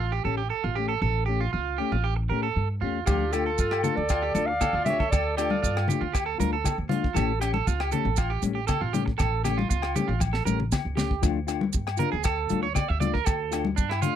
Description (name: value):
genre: highlife guitar band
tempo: 118 BPM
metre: 4/4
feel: straight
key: D harmonic minor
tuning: A4 = 445 Hz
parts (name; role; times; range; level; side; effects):
- electric guitar at the edge of break-up; arpeggios; 0.0-14.2 s; D4 to E5; -30 LUFS; right 12 dB; slapback echo
- upright bass; bass; 0.0-14.0 s; A1 to A2; -29 LUFS; equal; none
- mellow electric guitar; accompaniment; 0.2-14.2 s; E3 to G4; -30 LUFS; left 10 dB; none
- breathy clarinet; melody; 3.1-5.8 s; G4 to F5; -27 LUFS; right 1 dB; none
- warm trumpet; second line; 3.1-5.9 s; D4 to D5; -35 LUFS; left 11 dB; none
- tight funk drum kit; drums; 3.1-14.2 s; hi-hat, kick drum, rim click, snare drum, toms; -28 LUFS; right 1 dB; none
- agogo bells; percussion; 3.1-14.0 s; none; -36 LUFS; left 22 dB; none
- maracas; percussion; 3.1-14.1 s; none; -36 LUFS; right 29 dB; none
- congas; percussion; 3.8-14.1 s; none; -29 LUFS; left 4 dB; none
room: little or no reverb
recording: dry, close 1970s-style studio recording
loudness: -24 LUFS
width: side -10 dB against mid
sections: 0.0-11.2 A section; 11.2-14.2 B section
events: drum fill 10.2-11.2; clean electric guitar solo 11.2-14.2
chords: 0.0 A7; 3.1 Dm; 7.2 A7; 11.2 Dm